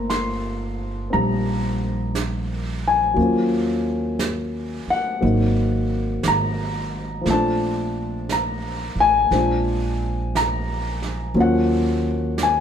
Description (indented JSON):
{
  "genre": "jazz ballad",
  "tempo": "59 BPM",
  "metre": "4/4",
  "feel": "swing 66% on 8ths",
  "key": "Bb major",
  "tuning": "A4 = 439 Hz",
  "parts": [
    { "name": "warm grand piano", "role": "accompaniment", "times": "0.0-12.6 s", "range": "F3 to C6", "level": "-21 LUFS", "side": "left 2 dB", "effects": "none" },
    { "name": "upright bass", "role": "bass", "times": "0.0-12.6 s", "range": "G1 to Eb2", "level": "-25 LUFS", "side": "right 2 dB", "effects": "none" },
    { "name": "vintage brush drum kit", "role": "drums", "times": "0.1-12.6 s", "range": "brushed snare drum, hi-hat, snare drum", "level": "-32 LUFS", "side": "right 5 dB", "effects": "none" }
  ],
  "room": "wet studio reverb, RT60 0.6 s",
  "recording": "band playing live in one room",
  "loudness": "-19 LUFS",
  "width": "side -8 dB against mid",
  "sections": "0.0-12.6 A section",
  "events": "none",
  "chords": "0.0 Gm11; 3.2 Ebm7; 5.2 Ab9; 7.3 Bbmaj9; 9.3 Bb7; 11.4 Ebm7"
}